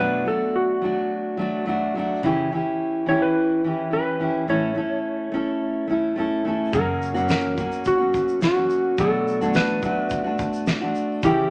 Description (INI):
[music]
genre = acoustic pop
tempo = 107 BPM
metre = 4/4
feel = straight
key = B minor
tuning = A4 = 439 Hz
[part]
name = clean lap steel guitar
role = melody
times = 0.0-11.5 s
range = F#4 to C#5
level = -26 LUFS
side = equal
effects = none
[part]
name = fingerpicked steel-string acoustic guitar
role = accompaniment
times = 0.0-11.5 s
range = F#2 to A4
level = -25 LUFS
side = equal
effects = none
[part]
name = loose indie drum kit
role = drums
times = 6.7-11.4 s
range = kick drum, shaker, snare drum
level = -29 LUFS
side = equal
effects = none
[sound]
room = moderate large studio reverb, RT60 1.0 s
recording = none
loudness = -23 LUFS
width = mono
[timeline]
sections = 0.0-6.7 A section; 6.7-11.5 B section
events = none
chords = 0.0 Bm7 (rootless); 2.2 C#dim; 4.5 A; 6.7 F#; 9.0 Bm7